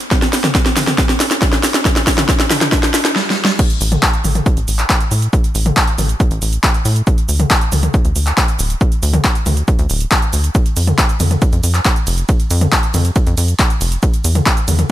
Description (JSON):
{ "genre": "uplifting trance", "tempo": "138 BPM", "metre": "4/4", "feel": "straight", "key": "unclear", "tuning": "A4 = 441 Hz", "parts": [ { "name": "big-room dance drum kit", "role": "drums", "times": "0.0-14.9 s", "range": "crash cymbal, handclaps, hi-hat, ride cymbal, shaker, snare drum, toms", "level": "-16 LUFS", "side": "equal", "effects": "none" }, { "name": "electronic kick drum", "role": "drums", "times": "0.1-14.5 s", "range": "none", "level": "-15 LUFS", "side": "equal", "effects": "none" }, { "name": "tight sequencer bass", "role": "bass", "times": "3.8-14.8 s", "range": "D1 to A2", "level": "-15 LUFS", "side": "equal", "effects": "sidechain pumping" } ], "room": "little or no reverb", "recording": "none", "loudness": "-12 LUFS", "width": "side -13 dB against mid", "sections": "0.0-3.6 A section; 3.6-14.9 B section", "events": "build-up 0.0-3.6; drum fill 0.0-3.2, 3.2-3.6; drop 3.6-14.9", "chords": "none" }